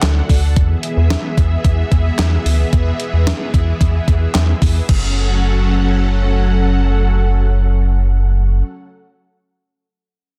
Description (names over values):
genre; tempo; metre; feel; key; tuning
synth-pop; 111 BPM; 4/4; straight; F# minor; A4 = 439 Hz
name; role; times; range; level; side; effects
string machine, cellos; sustained chords; 0.0-8.6 s; D3 to F#5; -24 LUFS; equal; ensemble chorus
rubbery square bass; bass; 0.0-8.6 s; F#1 to E2; -17 LUFS; equal; none
clean 12-bit digital drum machine; drums; 0.0-5.0 s; crash cymbal, handclaps, hi-hat, kick drum, snare drum; -19 LUFS; equal; none
room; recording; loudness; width
digital ambience; dense, heavily limited modern master; -15 LUFS; mono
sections
0.0-4.9 A section; 4.9-9.2 B section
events
none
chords
0.0 D; 0.6 E; 4.9 F#m